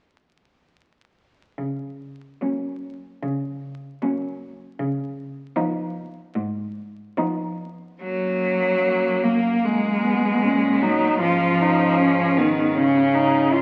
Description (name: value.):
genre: classical, lyrical piece for cello ensemble.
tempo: 75 BPM.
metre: 4/4.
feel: uneven beats, rubato.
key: F# major.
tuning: A4 = 439 Hz.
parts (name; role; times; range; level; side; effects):
rich cello; bass; 1.6-13.6 s; F#2 to C#3; -32 LUFS; equal; none.
rich cello; melody; 2.4-13.6 s; A#3 to E#4; -25 LUFS; equal; none.
rich cello; second line; 2.4-13.6 s; A#3 to C#4; -30 LUFS; equal; none.
rich cello; accompaniment; 2.4-13.6 s; C#3 to A#3; -24 LUFS; equal; none.
room: wet recital hall reverb, RT60 1.6 s.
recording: very old 78 rpm record, vinyl crackle.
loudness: -22 LUFS.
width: mono.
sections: 1.6-8.0 A section; 8.0-13.6 B section.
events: none.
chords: 1.6 F#/C#; 4.8 C#9; 8.0 F#; 11.2 C#/G#.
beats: | 1.59 2.42 3.23 4.02 | 4.79 5.56 6.35 7.17 | 8.02 8.84 9.64 10.43 | 11.21 11.99 12.77 13.53.